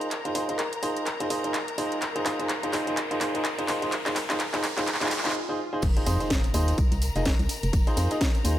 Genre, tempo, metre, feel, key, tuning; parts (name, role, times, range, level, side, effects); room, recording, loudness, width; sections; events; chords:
piano house; 126 BPM; 4/4; swing 58% on 16ths; F minor; A4 = 440 Hz
warm studio string section; sustained chords; 0.0-8.6 s; Bb4 to Bb5; -36 LUFS; left 3 dB; sidechain pumping
clear upright piano; riff; 0.0-8.6 s; Eb4 to Eb5; -29 LUFS; right 1 dB; sidechain pumping, digital delay
house drum kit; drums; 0.0-8.6 s; crash cymbal, handclaps, hi-hat, snare drum; -30 LUFS; equal; overdrive
riser, swell and impact; sound effects; 0.2-7.7 s; -37 LUFS; equal
organ-like FM bass; bass; 5.8-8.6 s; F1 to F2; -26 LUFS; equal; sidechain pumping
electronic kick drum; drums; 5.8-8.3 s; -25 LUFS; equal; overdrive
jazz brush drum kit; drums; 5.8-8.6 s; ride cymbal, snare drum; -44 LUFS; left 3 dB
tambourine; percussion; 5.8-8.6 s; -40 LUFS; left 2 dB
light reverb, small room reverb; -24 LUFS; side -12 dB against mid
0.0-5.8 A section; 5.8-8.6 B section
build-up 0.0-5.8; drum fill 0.0-5.3; riser 0.2-5.3; swell 4.9-5.8; break 5.3-5.8; drop 5.8-8.6; impact 5.8-7.7
0.0 Ab69/Eb; 5.8 Fm7